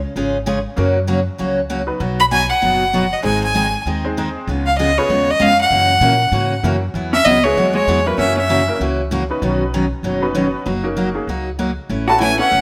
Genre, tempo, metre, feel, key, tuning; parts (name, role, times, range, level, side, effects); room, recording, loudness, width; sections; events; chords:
country, western swing; 194 BPM; 4/4; swing 62% on 8ths; A4 = 443 Hz
upright bass; bass; 0.0-12.6 s; E1 to A#2; -26 LUFS; equal
picked steel-string acoustic guitar; accompaniment; 0.2-12.6 s; B2 to B4; -22 LUFS; equal
honky-tonk upright piano; accompaniment; 0.8-12.5 s; F#3 to C#5; -27 LUFS; equal
rich fiddle; melody; 2.2-8.8, 12.1-12.6 s; B4 to B5; -17 LUFS; equal
vintage hollow-body jazz guitar; second line; 7.1-8.8, 12.1-12.6 s; F#3 to F#4; -23 LUFS; equal
moderate echo chamber reverb, RT60 2.0 s; -17 LUFS; mono
0.0-12.6 A section
0.0 C#; 0.8 F#; 2.0 B; 3.2 G#; 4.5 C#7; 5.7 F#7; 6.9 Eadd9; 8.2 F#7; 9.4 Badd9; 10.7 F#6; 11.9 Aadd9